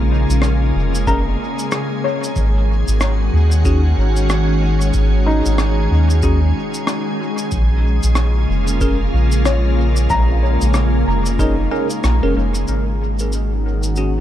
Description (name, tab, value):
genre	ambient dub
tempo	93 BPM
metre	4/4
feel	swing 59% on 16ths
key	unclear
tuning	A4 = 440 Hz
part	soft additive organ-like pad	sustained chords	0.0-14.2 s	Db3 to Ab4	-21 LUFS	equal	ensemble chorus, built-in reverb
part	felt-muted upright piano	arpeggios	0.0-13.7 s	Eb4 to Bb5	-26 LUFS	left 3 dB	dub echo
part	soft dub sub bass	bass	0.0-14.2 s	F1 to Eb2	-16 LUFS	equal	none
part	cabasa and rim click	drums	0.3-14.1 s	none	-26 LUFS	left 1 dB	dub echo
part	bell-like tine electric piano	stabs	1.1-14.1 s	Db4 to Bb4	-26 LUFS	equal	phaser, dub echo
part	electronic kick drum	drums	1.1-11.5 s	none	-22 LUFS	equal	none
room	studio ambience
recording	none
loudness	-14 LUFS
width	side -12 dB against mid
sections	0.0-12.7 A section; 12.7-14.2 B section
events	filter sweep on ambient pad 12.7-14.2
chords	0.0 Bbm7; 2.4 Ab7sus4; 7.5 Bbm7; 12.7 Ab7sus4